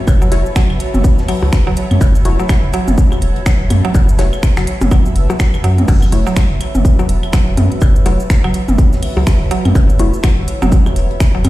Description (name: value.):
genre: minimal techno.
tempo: 124 BPM.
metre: 4/4.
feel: swing 59% on 16ths.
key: F# minor.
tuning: A4 = 438 Hz.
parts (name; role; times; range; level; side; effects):
granular cloud pad; texture; 0.0-11.5 s; F#4 to A5; -26 LUFS; equal; built-in reverb, sidechain pumping.
pulsing gated texture; texture; 0.0-11.5 s; C#5; -30 LUFS; equal; chorus, built-in reverb, sidechain pumping.
saturated sub bass; bass; 0.1-11.5 s; E1 to F#2; -14 LUFS; equal; tube saturation, sidechain pumping.
crisp fusion drum kit; drums; 0.1-11.5 s; hi-hat, shaker, snare drum; -34 LUFS; left 2 dB; sidechain pumping on hats, high-pass filter on hats, high-pass filter on snare, sidechain pumping on perc, high-pass filter on perc, high-pass filter on room.
electronic kick drum; drums; 0.1-11.3 s; none; -12 LUFS; equal; none.
house drum kit; drums; 0.1-11.5 s; crash cymbal, finger snaps, hi-hat, shaker; -27 LUFS; equal; none.
electronic claves, percussion blips and toms; percussion; 0.1-11.5 s; none; -21 LUFS; equal; overdrive, dub echo.
mallet-like synth pluck; riff; 0.2-11.4 s; F#3; -22 LUFS; right 1 dB; chorus, sidechain pumping, ping-pong delay.
filtered dub chord stab; stabs; 0.3-10.1 s; A3 to C#5; -25 LUFS; left 4 dB; phaser, dub echo.
room: little or no reverb.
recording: played on a big sound system in a bare room, large studio reverb.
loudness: -11 LUFS.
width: side -16 dB against mid.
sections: 0.0-11.5 A section.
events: none.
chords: 0.0 F#m7.